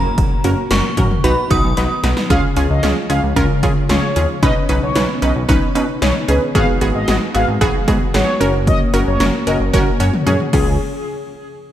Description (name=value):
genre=synth-pop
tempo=113 BPM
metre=4/4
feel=straight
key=Db mixolydian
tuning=A4 = 444 Hz
part: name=synth chime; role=melody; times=0.0-2.0 s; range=Bb5 to Eb6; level=-23 LUFS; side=equal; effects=ensemble chorus, digital delay
part: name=wide unison pluck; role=accompaniment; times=0.0-10.8 s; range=Cb4 to Db5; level=-19 LUFS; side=right 2 dB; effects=none
part: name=string machine, cellos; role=sustained chords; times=0.0-10.8 s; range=Db3 to Cb5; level=-24 LUFS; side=left 1 dB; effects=ensemble chorus
part: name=chorused synth bass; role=bass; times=0.0-10.8 s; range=Gb1 to Db3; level=-20 LUFS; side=equal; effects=none
part: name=80s electronic pad drums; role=drums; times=0.2-10.7 s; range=cowbell, crash cymbal, hi-hat, kick drum, snare drum, toms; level=-19 LUFS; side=equal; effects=gated reverb on snare and toms
part: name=mellow synth brass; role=second line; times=2.3-10.8 s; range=Ab4 to F5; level=-22 LUFS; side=left 1 dB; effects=chorus, digital delay
room=moderate concert hall reverb, RT60 2.3 s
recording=none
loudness=-13 LUFS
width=side -11 dB against mid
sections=0.0-2.3 A section; 2.3-10.8 B section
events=drum fill 1.8-2.3, 10.3-10.8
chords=0.0 Gb; 1.2 Cb; 2.3 Db; 4.4 Cbadd9; 6.5 Abm7; 8.4 Gb; 10.5 Db; 10.8 N.C.